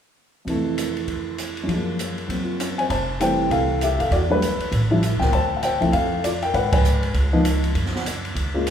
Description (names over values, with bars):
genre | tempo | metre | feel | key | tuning
jazz piano trio | 198 BPM | 4/4 | swing 61% on 8ths | unclear | A4 = 440 Hz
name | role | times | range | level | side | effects
dark upright piano | melody | 0.4-8.7 s | F2 to A5 | -22 LUFS | left 1 dB | none
open jazz drum kit | drums | 0.5-8.7 s | hi-hat, kick drum, ride cymbal, snare drum | -27 LUFS | right 1 dB | none
upright bass | bass | 2.9-8.7 s | F1 to Ab2 | -23 LUFS | equal | none
room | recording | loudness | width
wet recital hall reverb, RT60 1.8 s | recorded in a church or concert hall | -19 LUFS | side -8 dB against mid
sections
0.5-2.9 A section; 2.9-8.7 B section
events
band accent 6.7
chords
0.5 Fmaj7; 1.7 Gbmaj9; 2.9 Fmaj9; 4.1 E5; 4.7 A7; 5.3 Dm7; 6.5 Abm; 7.1 N.C.; 7.8 Gb5